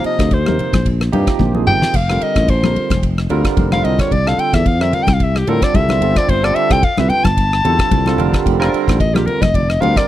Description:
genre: electric jazz fusion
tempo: 110 BPM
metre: 4/4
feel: swing 54% on 16ths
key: F mixolydian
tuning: A4 = 442 Hz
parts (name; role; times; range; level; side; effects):
- mellow soprano saxophone; melody; 0.0-10.1 s; G4 to A5; -18 LUFS; left 2 dB; none
- barky tine electric piano; accompaniment; 0.0-10.1 s; C3 to C5; -20 LUFS; right 5 dB; medium stereo tremolo, lush chorus
- sustaining fretless electric bass; bass; 0.0-10.0 s; F1 to A2; -17 LUFS; equal; analog chorus
- damped 70s drum kit; drums; 0.0-10.1 s; crash cymbal, kick drum, ride cymbal, rim click, snare drum, toms; -18 LUFS; equal; none
- congas; percussion; 0.5-10.0 s; none; -23 LUFS; left 3 dB; none
room: small room ambience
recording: dry, close 1970s-style studio recording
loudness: -12 LUFS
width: side -13 dB against mid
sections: 0.0-10.1 A section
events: soprano saxophone solo 0.0-10.1; drum fill 1.4-1.9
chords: 0.0 Bb13sus4; 1.9 Fsus24; 4.1 C13sus4; 6.0 G13sus4; 8.2 Fsus24

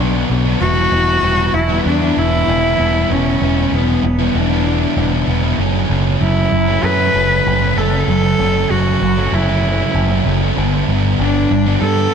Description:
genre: post-rock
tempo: 96 BPM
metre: 4/4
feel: straight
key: E dorian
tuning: A4 = 438 Hz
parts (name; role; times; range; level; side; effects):
- dark cello; melody; 0.0-12.1 s; B3 to B4; -18 LUFS; equal; digital delay
- sludgy distorted guitar; riff; 0.0-12.1 s; F#2 to E4; -17 LUFS; equal; overdrive
- growling picked electric bass; bass; 0.0-12.1 s; E1 to G2; -18 LUFS; equal; overdrive
room: light reverb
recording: none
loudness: -13 LUFS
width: side -7 dB against mid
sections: 0.0-12.1 A section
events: none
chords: 0.0 Bm; 0.6 Em7; 5.6 F#m7; 10.6 G

